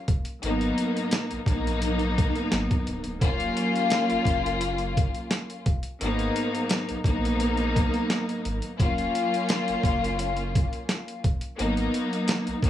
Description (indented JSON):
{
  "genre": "hip hop, boom-bap hip-hop",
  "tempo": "86 BPM",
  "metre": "4/4",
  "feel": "swing 54% on 16ths",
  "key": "unclear",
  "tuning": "A4 = 440 Hz",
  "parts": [
    { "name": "warm studio string section", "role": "accompaniment", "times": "0.0-12.7 s", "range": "Eb2 to F4", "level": "-26 LUFS", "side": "left 1 dB", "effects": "high-pass filter, low-pass filter" },
    { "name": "soft dub sub bass", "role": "bass", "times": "0.1-12.7 s", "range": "Db1 to Cb2", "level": "-31 LUFS", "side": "equal", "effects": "none" },
    { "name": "boom bap sampler-style drum kit", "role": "drums", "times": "0.1-12.7 s", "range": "hi-hat, kick drum, snare drum", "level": "-26 LUFS", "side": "equal", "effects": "none" }
  ],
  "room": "light reverb",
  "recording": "small room ambience",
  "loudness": "-23 LUFS",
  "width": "side -11 dB against mid",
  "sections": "0.0-12.7 A section",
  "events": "none",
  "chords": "0.4 Abm7; 3.2 Ebm7; 6.0 Abm7; 8.8 Ebm7; 11.6 Abm7"
}